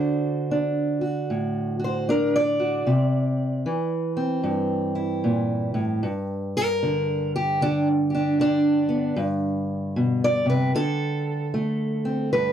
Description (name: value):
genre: acoustic country blues, solo or duo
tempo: 76 BPM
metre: 4/4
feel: swing 63% on 8ths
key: unclear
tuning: A4 = 440 Hz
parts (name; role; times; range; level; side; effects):
- fingerpicked steel-string acoustic guitar; solo; 0.0-12.5 s; G2 to D5; -21 LUFS; equal; none
room: light reverb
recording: dry, close 1970s-style studio recording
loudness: -21 LUFS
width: side -9 dB against mid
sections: 0.0-12.3 A section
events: steel-string acoustic guitar solo 0.0-12.3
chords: 0.0 D7; 2.9 C7; 6.0 G; 10.7 D5